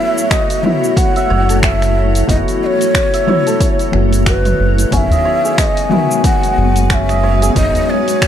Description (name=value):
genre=organic downtempo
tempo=91 BPM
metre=4/4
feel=swing 57% on 16ths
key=F# dorian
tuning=A4 = 442 Hz
part: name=breathy mellow ney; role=melody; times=0.0-8.3 s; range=B4 to F#5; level=-17 LUFS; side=right 1 dB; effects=tape echo
part: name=felt-muted upright piano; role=accompaniment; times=0.0-8.3 s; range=D#3 to F#4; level=-21 LUFS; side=left 6 dB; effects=sidechain pumping, digital delay
part: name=granular cloud pad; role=sustained chords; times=0.0-8.3 s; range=G#3 to C#5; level=-21 LUFS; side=equal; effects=built-in reverb, sidechain pumping
part: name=santur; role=arpeggios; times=0.0-8.3 s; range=C#4 to E5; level=-21 LUFS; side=equal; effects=digital delay
part: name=deep house drum kit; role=drums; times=0.2-8.3 s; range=finger snaps, hi-hat, shaker, toms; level=-20 LUFS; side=right 2 dB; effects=overdrive
part: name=electronic kick drum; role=drums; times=0.3-8.3 s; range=none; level=-17 LUFS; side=equal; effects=overdrive
part: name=round analog bass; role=bass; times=1.3-7.7 s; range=F#1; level=-14 LUFS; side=equal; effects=sidechain pumping
part: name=udu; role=percussion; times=5.1-7.9 s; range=none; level=-17 LUFS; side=left 1 dB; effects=none
room=light reverb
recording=dark, warm production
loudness=-11 LUFS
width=side -10 dB against mid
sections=0.0-8.3 A section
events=none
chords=0.0 F#m7; 4.9 G#m7/F#